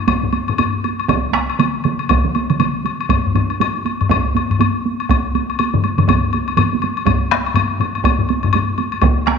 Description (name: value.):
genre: japanese traditional, taiko drum ensemble.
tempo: 121 BPM.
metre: 4/4.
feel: swing 60% on 16ths.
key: none.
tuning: none.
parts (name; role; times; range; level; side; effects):
taiko ensemble; percussion; 0.1-9.4 s; none; -21 LUFS; right 7 dB; none.
taiko ensemble; percussion; 0.1-9.2 s; none; -20 LUFS; right 2 dB; none.
woodblock; percussion; 0.1-9.4 s; none; -20 LUFS; left 10 dB; none.
taiko ensemble; percussion; 0.2-8.7 s; none; -20 LUFS; left 4 dB; none.
taiko ensemble; percussion; 1.1-9.4 s; none; -21 LUFS; right 6 dB; none.
room: wet echo chamber reverb, RT60 1.8 s, small room ambience.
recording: 1960s-style stereo with parts hard left and right, tape saturation.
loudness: -15 LUFS.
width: side -6 dB against mid.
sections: 0.0-9.4 A section.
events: speeding up 0.0-9.4.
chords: none.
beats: 0.09 0.59 | 1.10 1.60 2.10 2.61 | 3.11 3.61 4.10 4.60 | 5.10 5.59 6.08 6.58 | 7.07 7.56 8.05 8.54 | 9.02.